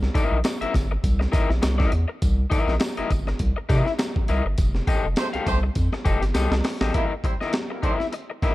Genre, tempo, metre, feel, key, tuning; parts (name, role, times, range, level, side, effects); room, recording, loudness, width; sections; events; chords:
funk; 102 BPM; 4/4; swing 56% on 16ths; C mixolydian; A4 = 440 Hz
round analog bass; bass; 0.0-6.9 s; F1 to C3; -23 LUFS; equal
breakbeat sampler-style drum kit; drums; 0.0-8.5 s; hi-hat, kick drum, snare drum; -24 LUFS; equal
crunchy overdriven guitar; accompaniment; 0.1-8.5 s; E4 to F5; -27 LUFS; left 4 dB
tambourine; percussion; 0.2-6.8 s; -45 LUFS; equal
clear horn section; second line; 5.2-8.5 s; G3 to E5; -31 LUFS; right 2 dB
little or no reverb; dark, warm production; -20 LUFS; side -17 dB against mid
0.0-6.9 A section; 6.9-8.5 B section
band accent 4.6-6.9; drum fill 6.4-6.9
0.0 C7#9; 4.6 F9; 6.9 C7#9/G